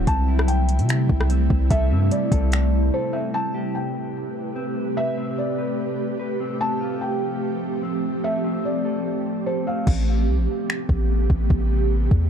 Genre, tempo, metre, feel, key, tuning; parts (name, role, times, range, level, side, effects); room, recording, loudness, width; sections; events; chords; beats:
hip hop, atmospheric cloud-rap; 147 BPM; 4/4; half-time; A minor; A4 = 439 Hz
ethereal airy pad; sustained chords; 0.0-12.3 s; C3 to B4; -25 LUFS; right 1 dB; ensemble chorus, built-in reverb, sidechain pumping
mellow electric guitar; arpeggios; 0.0-9.9 s; C4 to B4; -33 LUFS; left 3 dB; low-pass filter, ping-pong delay
long sustained 808-style bass; bass; 0.0-2.9, 9.9-12.3 s; A1 to C3; -20 LUFS; equal
felt-muted upright piano; melody; 0.1-9.9 s; C5 to A5; -29 LUFS; left 1 dB; low-pass filter, ping-pong delay
smooth R&B drum kit; drums; 0.1-2.6, 9.9-12.2 s; crash cymbal, finger snaps, hi-hat, kick drum, rim click; -22 LUFS; equal; overdrive
little or no reverb; dark, warm production; -20 LUFS; side -8 dB against mid
0.0-3.3 A section; 3.3-9.9 B section; 9.9-12.3 C section
break 2.9-3.3; hi-hats muted 9.9-12.3
0.1 C6; 3.3 Am9; 6.6 G9sus4; 9.9 Am9
| 0.07 0.48 0.89 1.30 | 1.71 2.12 2.52 2.93 | 3.34 3.75 4.16 4.56 | 4.97 5.38 5.79 6.20 | 6.61 7.01 7.42 7.83 | 8.24 8.64 9.05 9.46 | 9.87 10.28 10.69 11.09 | 11.50 11.91